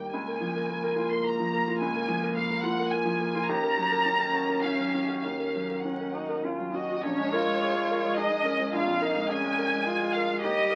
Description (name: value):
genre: neoclassical piano and strings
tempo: 106 BPM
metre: 3/4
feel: rubato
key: Bb minor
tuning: A4 = 438 Hz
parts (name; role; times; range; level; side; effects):
- muted chamber violin section; melody; 0.0-10.8 s; Db5 to C6; -32 LUFS; equal; none
- felt-muted upright piano; accompaniment; 0.0-10.8 s; Bb1 to Bb4; -32 LUFS; equal; none
- pure sine sub bass; bass; 0.0-10.8 s; Bb1 to Eb2; -54 LUFS; equal; none
- muted cello; second line; 0.1-10.8 s; Bb3 to G4; -34 LUFS; equal; none
room: moderate studio reverb, RT60 0.5 s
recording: very old 78 rpm record, vinyl crackle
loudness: -28 LUFS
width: mono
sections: 0.0-7.0 A section; 7.0-10.8 B section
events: none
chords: 0.1 Bbm7/Db; 3.5 Ebm7; 7.0 Bbm7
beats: | 0.12 0.69 1.25 | 1.81 2.37 2.92 | 3.47 4.04 4.62 | 5.22 5.83 6.43 | 7.03 7.61 8.18 | 8.74 9.30 9.86 | 10.42